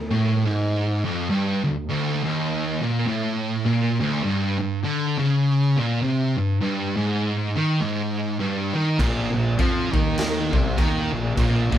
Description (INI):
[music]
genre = stoner and doom metal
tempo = 101 BPM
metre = 4/4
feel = swing 58% on 8ths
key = D phrygian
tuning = A4 = 440 Hz
[part]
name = fuzz guitar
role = riff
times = 0.0-11.8 s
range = D2 to F3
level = -29 LUFS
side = equal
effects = distortion
[part]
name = thick fuzz guitar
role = riff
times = 0.0-11.8 s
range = D2 to F3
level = -26 LUFS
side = left 5 dB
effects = distortion
[part]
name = thick fuzz guitar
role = riff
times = 0.0-11.8 s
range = D2 to F3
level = -24 LUFS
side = right 4 dB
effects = distortion
[part]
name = fuzz fingered electric bass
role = bass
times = 9.0-11.8 s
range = Bb1 to F2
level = -26 LUFS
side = equal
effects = overdrive
[part]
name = raw garage drum kit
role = drums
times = 9.0-11.8 s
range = crash cymbal, kick drum, snare drum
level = -24 LUFS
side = equal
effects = none
[sound]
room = moderate studio reverb, RT60 0.5 s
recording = band playing live in one room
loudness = -20 LUFS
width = side -10 dB against mid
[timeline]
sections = 0.0-11.8 A section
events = none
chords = 0.0 Dm; 4.3 G5; 9.0 Bb5